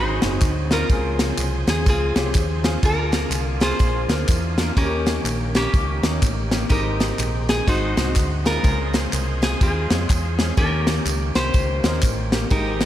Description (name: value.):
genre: uptempo gospel.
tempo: 124 BPM.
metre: 4/4.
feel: swing 61% on 8ths.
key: unclear.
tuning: A4 = 440 Hz.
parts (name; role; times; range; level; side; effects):
metal-body resonator slide guitar; melody; 0.0-12.9 s; Bb3 to C5; -25 LUFS; left 1 dB; analog delay.
warm grand piano; accompaniment; 0.0-12.9 s; Ab2 to Bb4; -29 LUFS; left 1 dB; lush chorus.
overdriven tonewheel organ; sustained chords; 0.0-12.9 s; Db3 to G5; -31 LUFS; right 1 dB; fast rotary speaker.
fingered electric bass; bass; 0.0-12.9 s; Gb1 to F2; -24 LUFS; equal; none.
modern studio drum kit; drums; 0.2-12.9 s; kick drum, ride cymbal, snare drum; -22 LUFS; equal; none.
tambourine and handclaps; percussion; 0.2-12.9 s; none; -34 LUFS; equal; none.
room: moderate lush hall reverb, RT60 1.9 s, studio reverb.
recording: dreamy mix soaked in reverb.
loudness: -18 LUFS.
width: side -12 dB against mid.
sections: 0.0-12.9 A section.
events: none.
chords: 0.0 Ab7; 0.9 Dbmaj7; 2.8 Bb7; 4.8 Eb7; 6.7 Abmaj7; 7.7 Ab7; 8.6 Dbmaj7; 10.6 Eb7.